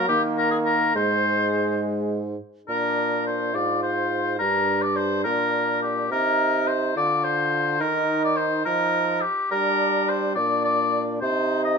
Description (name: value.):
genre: classical, renaissance-style consort dance.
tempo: 70 BPM (dotted quarters).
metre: 6/8.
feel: straight.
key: Bb mixolydian.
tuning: A4 = 440 Hz.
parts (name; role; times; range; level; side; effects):
warm oboe; melody; 0.0-11.8 s; G4 to Eb5; -22 LUFS; left 1 dB; none.
bright trombone; accompaniment; 0.0-11.8 s; Ab3 to F4; -28 LUFS; equal; none.
mellow bassoon; bass; 0.0-11.8 s; G2 to G3; -27 LUFS; right 2 dB; none.
room: moderate stone room reverb, RT60 1.2 s.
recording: minimal, uncompressed stereo recording.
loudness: -20 LUFS.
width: side -5 dB against mid.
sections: 0.0-2.7 A section; 2.7-11.8 B section.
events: none.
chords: 0.1 Eb5; 1.0 Ab; 2.7 Bb; 4.4 Gm; 6.1 Cm; 7.8 Eb5; 9.5 Gm; 11.2 Cm.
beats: 0.09 | 0.95 1.82 | 2.68 3.54 | 4.40 5.26 | 6.11 6.96 | 7.81 8.66 | 9.52 10.37 | 11.22.